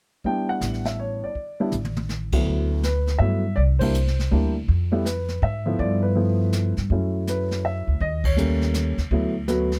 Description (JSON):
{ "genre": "jazz piano trio", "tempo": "162 BPM", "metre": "3/4", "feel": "swing 64% on 8ths", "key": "D major", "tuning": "A4 = 440 Hz", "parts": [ { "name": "warm upright piano", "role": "melody", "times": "0.2-9.8 s", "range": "D2 to G5", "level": "-27 LUFS", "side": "equal", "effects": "none" }, { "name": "jazz brush drum kit", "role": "drums", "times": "0.2-9.8 s", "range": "brushed snare drum, crash cymbal, hi-hat, kick drum, ride cymbal, snare drum, toms", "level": "-31 LUFS", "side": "equal", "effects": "none" }, { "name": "upright bass", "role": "bass", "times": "0.6-9.8 s", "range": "A1 to G#2", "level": "-25 LUFS", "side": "equal", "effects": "none" } ], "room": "little or no reverb", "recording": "close, detailed microphones", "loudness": "-23 LUFS", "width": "mono", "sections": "0.2-2.5 A section; 2.5-9.8 B section", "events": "drum fill 1.7-2.1; band accent 3.8, 8.2", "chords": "0.2 A7sus4; 2.5 D69; 3.6 C7; 4.7 Fmaj7#11; 5.8 G13; 6.9 F#m7; 8.0 Eb7#11; 9.1 D69" }